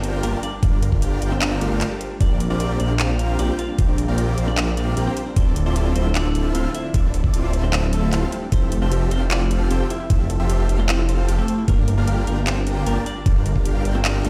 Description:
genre	future bass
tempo	152 BPM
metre	4/4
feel	half-time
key	unclear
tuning	A4 = 440 Hz
part	clean electric guitar	melody	0.0-14.3 s	G3 to F5	-31 LUFS	equal	subtle chorus, sidechain pumping, dub echo
part	ethereal airy pad	sustained chords	0.0-14.3 s	D3 to A5	-38 LUFS	equal	none
part	unison pluck	arpeggios	0.0-14.3 s	D4 to D5	-35 LUFS	equal	vintage 12-bit sampler grit, sidechain pumping, delay
part	supersaw chords	riff	0.0-14.3 s	C4 to A5	-30 LUFS	equal	subtle chorus, sidechain pumping
part	detuned saw bass	bass	0.0-14.3 s	D1 to Bb1	-23 LUFS	equal	chorus, sidechain pumping
part	trap drum kit	drums	0.0-14.3 s	handclaps, hi-hat	-29 LUFS	equal	none
part	electronic kick drum	drums	0.6-13.6 s	none	-20 LUFS	equal	none
room	digital ambience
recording	played on a big sound system in a bare room, stone room reverb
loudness	-20 LUFS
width	mono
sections	0.0-14.3 A section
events	kick drops out 7.7-8.5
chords	0.0 Gm7; 2.0 Bb69; 5.2 Dm9; 8.5 Fmaj9; 11.7 Gm7

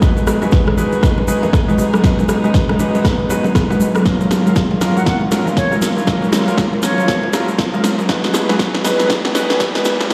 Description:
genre	afro house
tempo	119 BPM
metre	4/4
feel	swing 60% on 16ths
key	G# dorian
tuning	A4 = 440 Hz
part	warm chamber string section	sustained chords	0.0-10.1 s	G#2 to B4	-27 LUFS	equal	sidechain pumping
part	kalimba	arpeggios	0.0-10.1 s	F#3 to G#4	-22 LUFS	equal	sidechain pumping, low-pass filter, tape echo
part	felt-muted upright piano	stabs	0.0-10.1 s	F#3 to B4	-24 LUFS	equal	sidechain pumping, tape echo
part	electronic kick drum	drums	0.0-10.1 s	none	-19 LUFS	equal	overdrive
part	electronic snare drum and rim click	drums	0.0-10.1 s	none	-23 LUFS	equal	overdrive
part	egg shaker	percussion	0.0-10.1 s	none	-36 LUFS	equal	none
part	riser	sound effects	1.0-10.1 s	none	-30 LUFS	equal	none
part	bongos	percussion	0.2-10.1 s	none	-27 LUFS	equal	none
part	congas	percussion	0.2-10.0 s	none	-26 LUFS	equal	none
part	concert flute	melody	5.0-7.2 s	C#5 to F#5	-25 LUFS	equal	low-pass filter, tape echo
room	wet recital hall reverb, RT60 1.3 s, studio reverb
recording	played on a big sound system in a bare room, stone room reverb, high-pass filter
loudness	-15 LUFS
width	mono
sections	0.0-10.1 A section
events	build-up 0.0-10.1; drum fill 0.0-10.1; filter sweep on kalimba 0.0-10.1; filter sweep on flute 0.0-10.1; filter sweep 0.0-10.1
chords	0.0 G#m7; 4.1 F#maj7/G#; 8.1 G#m7

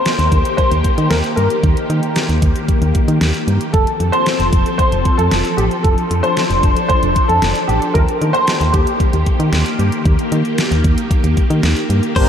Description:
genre	synth-pop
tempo	114 BPM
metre	4/4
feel	straight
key	unclear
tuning	A4 = 439 Hz
part	dark baby grand piano	melody	0.0-11.6 s	G4 to C5	-18 LUFS	equal	ensemble chorus, ping-pong delay
part	phased string machine	sustained chords	0.0-12.3 s	Eb3 to Bb4	-20 LUFS	left 1 dB	ensemble chorus, phaser
part	pop drum kit	drums	0.1-12.3 s	crash cymbal, hi-hat, kick drum, snare drum	-18 LUFS	equal	overdrive
part	solid FM bass	bass	0.2-12.3 s	F1 to Eb3	-16 LUFS	equal	none
part	direct-recorded clean electric guitar	second line	12.2-12.3 s	C5	-18 LUFS	left 5 dB	wide subtle chorus
part	mellow synth brass	accompaniment	12.2-12.3 s	Bb3 to Bb4	-17 LUFS	left 1 dB	chorus, phaser
room	wet cathedral reverb, RT60 6.8 s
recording	dreamy mix soaked in reverb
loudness	-13 LUFS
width	side -8 dB against mid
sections	0.0-12.2 A section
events	none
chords	0.0 Eb; 3.7 F; 7.9 Eb

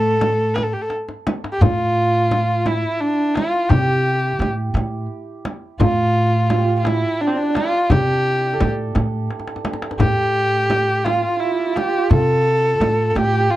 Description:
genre	Persian modal ensemble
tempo	57 BPM (dotted quarters)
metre	6/8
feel	straight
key	A dastgah shur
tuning	A4 = 440 Hz
part	rich kamancheh	melody	0.0-13.6 s	C4 to Bb4+47c	-19 LUFS	equal	none
part	rich cello	second line	0.0-0.5 s	A3	-26 LUFS	left 3 dB	none
part	santur	second line	0.0-13.6 s	D4 to C5	-26 LUFS	right 5 dB	none
part	upright bass	bass	0.0-13.5 s	A2 to C3	-21 LUFS	equal	none
part	frame drum	percussion	0.2-13.3 s	none	-24 LUFS	equal	none
part	tombak	percussion	0.2-13.3 s	none	-22 LUFS	left 2 dB	none
room	light reverb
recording	dark, warm production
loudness	-16 LUFS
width	side -15 dB against mid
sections	0.0-1.6 A section; 1.6-13.6 B section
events	drum fill 0.9-1.6, 9.3-10.0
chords	none

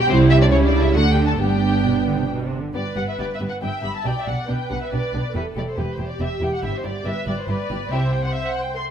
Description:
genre	quick classical-period movement for string orchestra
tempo	139 BPM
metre	3/4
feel	rubato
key	G major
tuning	A4 = 441 Hz
part	muted studio violin section	melody	0.0-8.8 s	B4 to C6	-27 LUFS	left 2 dB	none
part	muted studio violin section	second line	0.0-8.1 s	B3 to A4	-29 LUFS	left 4 dB	none
part	muted studio viola section	accompaniment	0.1-8.9 s	G3 to E5	-24 LUFS	right 2 dB	none
part	muted studio cello section	bass	0.1-8.3 s	E2 to D3	-26 LUFS	right 3 dB	none
part	muted studio double bass section	bass	0.1-8.3 s	E1 to D2	-23 LUFS	right 2 dB	none
room	moderate scoring stage reverb, RT60 1.8 s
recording	none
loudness	-19 LUFS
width	side -8 dB against mid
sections	0.0-2.7 A section; 2.7-8.9 B section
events	none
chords	0.1 C; 0.5 C#dim; 1.0 D5; 1.4 G; 4.1 G/B; 5.4 Em; 6.6 Em/G; 7.9 C

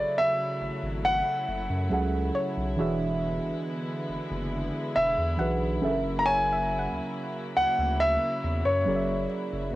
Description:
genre	contemporary R&B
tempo	69 BPM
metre	4/4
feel	straight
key	unclear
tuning	A4 = 442 Hz
part	warm baby grand piano	melody	0.0-9.3 s	C#5 to A#5	-26 LUFS	equal	tape echo
part	muted felt-like synth keys	accompaniment	0.0-9.8 s	C#3 to F#5	-31 LUFS	right 2 dB	chorus
part	warm studio string section	sustained chords	0.0-9.7 s	C#3 to E4	-35 LUFS	left 1 dB	none
part	saturated sub bass	bass	0.0-9.8 s	E1 to F#2	-32 LUFS	equal	none
part	soft round pluck	texture	0.0-9.3 s	C#5 to F#5	-35 LUFS	left 2 dB	chorus, tape echo
room	light reverb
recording	home recording on cassette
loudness	-25 LUFS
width	side -16 dB against mid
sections	0.0-9.8 A section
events	none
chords	0.0 F#m7; 2.8 E7; 5.8 F#7

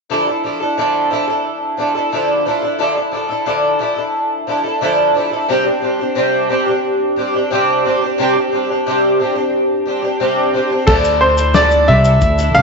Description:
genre	acoustic pop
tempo	89 BPM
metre	4/4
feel	straight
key	unclear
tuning	A4 = 440 Hz
part	fingerpicked twelve-string acoustic guitar	accompaniment	0.1-12.6 s	C3 to A4	-14 LUFS	equal	double-tracked left and right
part	bright upright piano	melody	10.9-12.6 s	A4 to F5	-13 LUFS	equal	slapback echo
part	upright bass	bass	10.9-12.6 s	C2 to D2	-15 LUFS	equal	none
part	loose indie drum kit	drums	10.9-12.5 s	crash cymbal, kick drum, shaker, snare drum	-19 LUFS	left 2 dB	none
room	moderate plate reverb, RT60 2.1 s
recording	1960s-style stereo, nothing above 7.8 kHz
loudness	-13 LUFS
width	side -4 dB against mid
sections	0.1-10.9 A section; 10.9-12.6 B section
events	none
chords	0.1 Dmadd9; 5.5 Csus2; 10.9 Dmadd9

